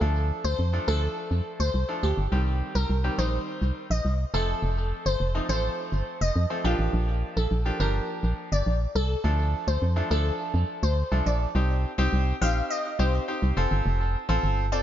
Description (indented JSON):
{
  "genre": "dance-pop",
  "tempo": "104 BPM",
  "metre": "4/4",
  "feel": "straight",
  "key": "C dorian",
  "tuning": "A4 = 437 Hz",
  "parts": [
    { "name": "glassy wavetable pluck", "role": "melody", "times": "0.0-14.8 s", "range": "F4 to F5", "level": "-31 LUFS", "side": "left 1 dB", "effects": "chorus, tape echo" },
    { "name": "bright grand piano", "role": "accompaniment", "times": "0.0-14.8 s", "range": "Eb3 to A4", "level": "-31 LUFS", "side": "equal", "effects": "tape echo" },
    { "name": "organ-like FM bass", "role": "bass", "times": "0.0-14.8 s", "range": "F1 to F2", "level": "-24 LUFS", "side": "equal", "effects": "none" }
  ],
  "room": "light reverb",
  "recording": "echo-heavy mix, nothing above 7.5 kHz",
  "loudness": "-24 LUFS",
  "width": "side -11 dB against mid",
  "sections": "0.0-11.6 A section; 11.6-14.8 B section",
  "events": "build-up 0.0-11.6; drop 11.6-14.8",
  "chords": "0.0 Dm; 2.3 Cm; 4.3 F; 6.6 Bb6; 9.2 Dm; 11.6 Cm; 13.6 F"
}